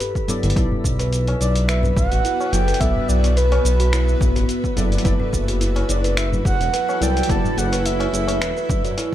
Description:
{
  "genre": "organic downtempo",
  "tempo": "107 BPM",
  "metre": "4/4",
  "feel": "swing 54% on 16ths",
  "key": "unclear",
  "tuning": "A4 = 440 Hz",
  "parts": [
    { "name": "deep mellow chord stab", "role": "accompaniment", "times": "0.0-9.1 s", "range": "F#3 to D5", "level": "-29 LUFS", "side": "equal", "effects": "chorus, sidechain pumping, ping-pong delay, shimmer reverb" },
    { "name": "kalimba", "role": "arpeggios", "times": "0.0-9.1 s", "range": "E4 to D5", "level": "-26 LUFS", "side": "equal", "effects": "ping-pong delay, shimmer reverb" },
    { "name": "dusty soul sampler-style drum kit", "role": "drums", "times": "0.0-9.1 s", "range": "cabasa, finger snaps, hi-hat", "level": "-28 LUFS", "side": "equal", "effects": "none" },
    { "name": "electronic kick drum", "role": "drums", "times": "0.2-9.1 s", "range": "none", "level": "-22 LUFS", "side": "equal", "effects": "overdrive" },
    { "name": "tabla", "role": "percussion", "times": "0.2-9.1 s", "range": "none", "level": "-30 LUFS", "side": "left 2 dB", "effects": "none" },
    { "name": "smooth synth bass", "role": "bass", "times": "0.4-8.9 s", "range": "E1 to F#2", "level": "-20 LUFS", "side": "equal", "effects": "none" },
    { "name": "granular cloud pad", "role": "sustained chords", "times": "1.6-9.1 s", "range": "B3 to E5", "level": "-29 LUFS", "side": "equal", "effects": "built-in reverb, sidechain pumping, shimmer reverb" },
    { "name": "breathy flute-like synth lead", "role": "melody", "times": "1.4-9.0 s", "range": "B4 to A5", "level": "-26 LUFS", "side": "right 2 dB", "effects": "wide subtle chorus, ping-pong delay, shimmer reverb" }
  ],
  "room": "light reverb, digital ambience",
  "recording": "none",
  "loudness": "-17 LUFS",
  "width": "side -12 dB against mid",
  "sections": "0.0-9.1 A section",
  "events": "none",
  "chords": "0.0 Em7; 0.6 B7sus4; 5.1 F#m7",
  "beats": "0.00 | 0.56 1.12 1.69 2.25 | 2.81 3.37 3.93 4.49 | 5.05 5.61 6.17 6.73 | 7.29 7.85 8.41 8.98"
}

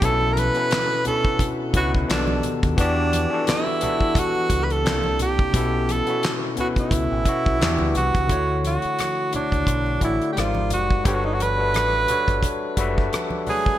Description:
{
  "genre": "R&B, neo-soul",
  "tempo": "87 BPM",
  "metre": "4/4",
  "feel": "swing 55% on 16ths",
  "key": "unclear",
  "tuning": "A4 = 440 Hz",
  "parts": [
    { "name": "breathy tenor saxophone", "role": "melody", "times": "0.0-13.8 s", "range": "D4 to B4", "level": "-23 LUFS", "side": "right 2 dB", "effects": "ping-pong delay" },
    { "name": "overdriven tine electric piano", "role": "accompaniment", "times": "0.0-13.8 s", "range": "B2 to E5", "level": "-25 LUFS", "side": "left 4 dB", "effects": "none" },
    { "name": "deep dub fingered electric bass", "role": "bass", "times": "0.0-13.1 s", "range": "F#1 to E2", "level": "-25 LUFS", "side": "equal", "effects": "none" },
    { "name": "damped 70s drum kit", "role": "drums", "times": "0.0-13.8 s", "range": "handclaps, hi-hat, kick drum, rim click, snare drum", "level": "-24 LUFS", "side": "equal", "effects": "gated reverb" },
    { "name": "congas", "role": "percussion", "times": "0.2-13.6 s", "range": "none", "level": "-35 LUFS", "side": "right 2 dB", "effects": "none" }
  ],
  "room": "light reverb, studio ambience",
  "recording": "bright 1980s-style digital production",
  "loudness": "-19 LUFS",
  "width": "side -12 dB against mid",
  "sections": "0.0-8.3 A section; 8.3-13.8 B section",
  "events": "none",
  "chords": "0.0 B9sus4; 2.1 B7alt; 2.8 Em9; 4.8 C9; 5.5 B9sus4; 7.6 Em9; 8.3 Dmaj9; 10.4 G#maj9#11; 11.1 Gmaj9#11",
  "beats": "| 0.02 0.71 1.40 2.09 | 2.78 3.47 4.16 4.85 | 5.54 6.23 6.92 7.61 | 8.29 8.98 9.67 10.36 | 11.05 11.74 12.43 13.12"
}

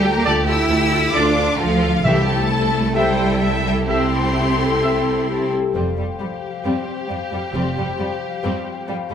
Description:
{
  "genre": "cinematic",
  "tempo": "133 BPM",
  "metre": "4/4",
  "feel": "straight",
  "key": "F major",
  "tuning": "A4 = 441 Hz",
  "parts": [
    { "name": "rich symphonic violin section", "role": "melody", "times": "0.0-9.1 s", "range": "F4 to E5", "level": "-26 LUFS", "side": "left 2 dB", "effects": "none" },
    { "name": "warm symphonic violin section", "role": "second line", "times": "0.0-9.1 s", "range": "G3 to E6", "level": "-25 LUFS", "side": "left 3 dB", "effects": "none" },
    { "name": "rich symphonic viola section", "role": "accompaniment", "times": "0.0-9.1 s", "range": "G3 to A4", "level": "-28 LUFS", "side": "equal", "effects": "none" },
    { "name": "concert harp", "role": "arpeggios", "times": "0.0-9.1 s", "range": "C3 to G5", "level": "-27 LUFS", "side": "left 7 dB", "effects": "none" },
    { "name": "rich symphonic cello section", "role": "bass", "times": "0.0-9.1 s", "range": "F2 to E4", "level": "-22 LUFS", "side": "right 2 dB", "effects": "none" },
    { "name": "rich symphonic double bass section", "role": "bass", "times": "0.0-7.8 s", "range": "F1 to D2", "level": "-24 LUFS", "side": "right 3 dB", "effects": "none" },
    { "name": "mellow French horn section", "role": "sustained chords", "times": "0.3-5.7 s", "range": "E4 to A4", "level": "-25 LUFS", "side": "left 4 dB", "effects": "none" },
    { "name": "clear trumpet section", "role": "stabs", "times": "0.3-5.0 s", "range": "D5 to E5", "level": "-25 LUFS", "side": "right 1 dB", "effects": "none" },
    { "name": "timpani", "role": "percussion", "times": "2.0-2.7 s", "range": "C3", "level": "-24 LUFS", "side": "equal", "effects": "none" }
  ],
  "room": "moderate scoring stage reverb, RT60 1.6 s",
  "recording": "none",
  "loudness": "-17 LUFS",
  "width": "side -8 dB against mid",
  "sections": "0.0-5.8 A section; 5.8-9.1 B section",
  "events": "none",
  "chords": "0.0 Dm; 2.1 C6; 5.8 Fsus2",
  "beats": "| 0.26 0.71 1.16 1.60 | 2.05 2.51 2.96 3.42 | 3.89 4.36 4.83 5.29 | 5.75 6.21 6.66 7.11 | 7.55 8.00 8.45 8.89"
}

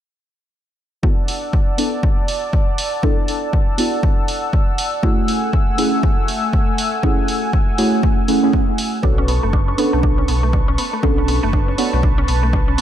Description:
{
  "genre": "deep house",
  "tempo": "120 BPM",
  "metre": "4/4",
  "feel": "swing 60% on 16ths",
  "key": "unclear",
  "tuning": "A4 = 441 Hz",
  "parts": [
    { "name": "warm analog pad", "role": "sustained chords", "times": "1.0-12.8 s", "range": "A3 to E6", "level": "-24 LUFS", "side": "equal", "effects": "chorus, tremolo, sidechain pumping" },
    { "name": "deep mellow chord stab", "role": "stabs", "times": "1.0-12.8 s", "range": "A3 to A4", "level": "-21 LUFS", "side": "right 1 dB", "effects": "analog chorus, sidechain pumping, ping-pong delay" },
    { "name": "electronic kick drum", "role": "drums", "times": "1.0-12.7 s", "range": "none", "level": "-17 LUFS", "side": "equal", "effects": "none" },
    { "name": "electronic hi-hat", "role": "drums", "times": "1.3-12.8 s", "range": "none", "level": "-26 LUFS", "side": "right 2 dB", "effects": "none" },
    { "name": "mallet-like synth pluck", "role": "arpeggios", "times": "9.0-12.8 s", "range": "A3 to D4", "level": "-24 LUFS", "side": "right 2 dB", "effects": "chorus, phaser, cassette tape, sidechain pumping, analog delay" },
    { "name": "sub bass with octave", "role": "bass", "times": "9.0-12.8 s", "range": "F#1 to B1", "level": "-19 LUFS", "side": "equal", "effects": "sidechain pumping" }
  ],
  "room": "light reverb",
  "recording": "none",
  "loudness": "-15 LUFS",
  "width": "side -11 dB against mid",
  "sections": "1.0-12.8 A section",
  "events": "filter sweep on synth stab 1.0-12.8",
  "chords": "1.0 E9sus4; 5.0 F#m9; 9.0 Bm9",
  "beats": "| 1.03 1.53 2.03 2.53 | 3.03 3.53 4.03 4.53 | 5.03 5.53 6.03 6.53 | 7.03 7.53 8.03 8.53 | 9.03 9.53 10.03 10.53 | 11.03 11.53 12.03 12.53"
}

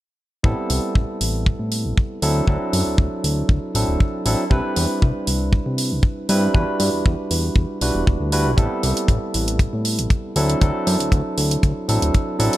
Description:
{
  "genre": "nu-disco, nu disco",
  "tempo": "118 BPM",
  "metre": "4/4",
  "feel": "swing 53% on 16ths",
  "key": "unclear",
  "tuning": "A4 = 440 Hz",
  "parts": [
    { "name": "barky tine electric piano", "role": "accompaniment", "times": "0.4-12.6 s", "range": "F#3 to B4", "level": "-23 LUFS", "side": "right 1 dB", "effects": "sidechain pumping, ping-pong delay" },
    { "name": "fat analog bass", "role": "bass", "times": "0.4-12.5 s", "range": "D1 to C3", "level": "-22 LUFS", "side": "equal", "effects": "none" },
    { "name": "kick drum", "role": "drums", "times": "0.4-12.3 s", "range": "none", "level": "-17 LUFS", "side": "equal", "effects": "none" },
    { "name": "electronic hi-hat", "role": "drums", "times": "0.7-12.6 s", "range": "none", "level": "-25 LUFS", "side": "right 2 dB", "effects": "overdrive" }
  ],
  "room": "light reverb, small room ambience",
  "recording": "bright 1980s-style digital production",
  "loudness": "-18 LUFS",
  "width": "side -15 dB against mid",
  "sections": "0.4-12.6 A section",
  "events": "filter sweep on analog synth bass 0.4-12.6",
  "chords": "0.4 Am9; 2.2 D9; 4.5 Cmaj9; 6.5 Em9; 8.6 Am9; 10.4 D9",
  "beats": "| 0.44 0.95 1.46 1.97 | 2.48 2.99 3.50 4.00 | 4.51 5.02 5.53 6.04 | 6.55 7.05 7.56 8.07 | 8.58 9.09 9.60 10.11 | 10.61 11.12 11.63 12.14"
}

